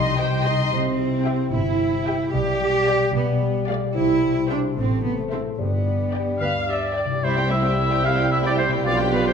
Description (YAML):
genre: cinematic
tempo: 74 BPM (dotted quarters)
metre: 6/8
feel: straight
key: C major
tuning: A4 = 440 Hz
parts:
  - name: warm studio violin section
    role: melody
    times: 0.0-9.3 s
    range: E5 to C6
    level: -31 LUFS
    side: left 5 dB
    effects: none
  - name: rich studio violin section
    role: second line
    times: 0.0-9.3 s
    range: E4 to E5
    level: -31 LUFS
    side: left 2 dB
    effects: none
  - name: dark studio viola section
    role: accompaniment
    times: 0.0-9.3 s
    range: G3 to F5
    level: -31 LUFS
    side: equal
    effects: none
  - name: mellow French horn section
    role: sustained chords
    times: 0.0-9.3 s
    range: F3 to Eb5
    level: -28 LUFS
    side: left 3 dB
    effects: none
  - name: concert harp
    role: arpeggios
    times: 0.0-9.3 s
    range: G2 to E5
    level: -27 LUFS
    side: left 7 dB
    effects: none
  - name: dark studio double bass section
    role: bass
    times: 0.0-9.3 s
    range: G1 to D2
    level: -28 LUFS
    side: right 4 dB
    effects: none
  - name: dark chamber cello section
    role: bass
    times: 0.7-9.3 s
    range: C2 to G4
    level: -24 LUFS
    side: right 4 dB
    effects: none
  - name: bright oboe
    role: second line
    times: 6.4-9.3 s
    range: B4 to F5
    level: -25 LUFS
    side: equal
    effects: none
  - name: mellow hollow concert flute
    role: second line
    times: 6.4-9.3 s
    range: B4 to F5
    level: -31 LUFS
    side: equal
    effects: none
  - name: mellow clarinet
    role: second line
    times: 7.2-9.3 s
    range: E4 to F4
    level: -31 LUFS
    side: right 1 dB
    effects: none
  - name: mellow bassoon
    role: accompaniment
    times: 7.2-9.3 s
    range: G3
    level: -28 LUFS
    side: right 4 dB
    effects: none
  - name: warm tuba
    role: bass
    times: 7.2-9.3 s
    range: B1 to C2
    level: -28 LUFS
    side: right 5 dB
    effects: none
room: wet recital hall reverb, RT60 1.4 s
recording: minimal, uncompressed stereo recording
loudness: -19 LUFS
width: side -6 dB against mid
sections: 0.0-7.2 A section; 7.2-9.3 B section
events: none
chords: 0.0 Cm; 0.7 C; 2.3 G/B; 3.1 G7/B; 4.0 C; 4.8 Am; 5.6 G; 7.2 C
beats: | 0.73 1.53 | 2.34 3.15 | 3.95 4.77 | 5.59 6.41 | 7.24 8.05 | 8.86